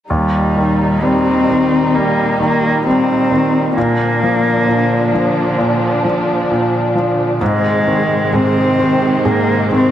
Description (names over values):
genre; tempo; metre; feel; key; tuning
pop; 66 BPM; 4/4; straight; Eb major; A4 = 440 Hz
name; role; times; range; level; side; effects
dark cello; melody; 0.1-9.9 s; G3 to C4; -15 LUFS; left 1 dB; none
clear grand piano; accompaniment; 0.1-9.9 s; Eb2 to G3; -17 LUFS; equal; none
dark studio string section; sustained chords; 0.1-9.9 s; Bb2 to Eb4; -19 LUFS; right 1 dB; none
nylon-string guitar; arpeggios; 7.4-9.9 s; Ab2 to Ab4; -22 LUFS; right 3 dB; digital delay
room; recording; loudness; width
moderate plate reverb, RT60 3.8 s; none; -12 LUFS; side -11 dB against mid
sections
0.1-9.9 A section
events
none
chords
0.1 Eb; 3.8 Bb; 7.4 Ab